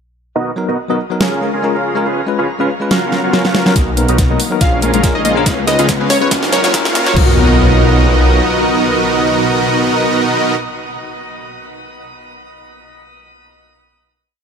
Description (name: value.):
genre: future bass.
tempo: 141 BPM.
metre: 4/4.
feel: swing 54% on 16ths, half-time.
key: B lydian.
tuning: A4 = 441 Hz.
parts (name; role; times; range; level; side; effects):
dense compressed supersaw; riff; 0.4-10.6 s; B3 to E#5; -16 LUFS; right 2 dB; sidechain pumping, low-pass filter, dub echo.
bell-like tine electric piano; accompaniment; 0.6-10.6 s; F#3 to B4; -20 LUFS; left 3 dB; medium stereo tremolo, sidechain pumping, dub echo.
dubstep drum kit; drums; 1.2-7.3 s; crash cymbal, hi-hat, snare drum; -19 LUFS; right 1 dB; high-pass filter on snare, high-pass filter on hats, high-pass filter on cymbals.
swell, riser and impact; sound effects; 3.1-10.6 s; none; -24 LUFS; equal; none.
shimmering ambient pad; sustained chords; 4.5-10.6 s; B2 to A#4; -25 LUFS; right 1 dB; none.
Celtic harp; arpeggios; 3.8-10.4 s; G#3 to E#4; -23 LUFS; left 8 dB; none.
wide detuned saw bass; bass; 3.8-8.4 s; F#1 to C#2; -15 LUFS; equal; chorus, sidechain pumping.
electronic kick drum; drums; 3.8-7.3 s; none; -14 LUFS; equal; none.
plucky unison lead; melody; 4.6-7.2 s; C#5 to E#5; -20 LUFS; equal; none.
room: light reverb.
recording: high-pass filter, faint mains hum.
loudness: -11 LUFS.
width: side -7 dB against mid.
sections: 0.4-3.8 intro; 3.8-7.2 build; 7.2-10.6 final chord.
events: swell 3.1-3.8; drum fill 3.1-3.8, 3.8-7.2; build-up 3.8-7.2; filter sweep on supersaw synth 3.8-7.2; filter sweep on harp 3.8-7.2; filter sweep 3.8-7.2.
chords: 0.4 Bmaj7; 1.2 A#m7; 2.1 C#7; 2.9 F#maj7; 3.8 Bmaj7; 4.6 A#m7; 5.5 C#7; 6.3 F#maj7; 7.2 Bmaj7.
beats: | 0.36 0.78 1.21 1.63 | 2.06 2.48 2.91 3.33 | 3.76 4.19 4.61 5.04 | 5.46 5.89 6.31 6.74 | 7.17 7.59 8.02 8.44 | 8.87 9.29 9.72 10.14.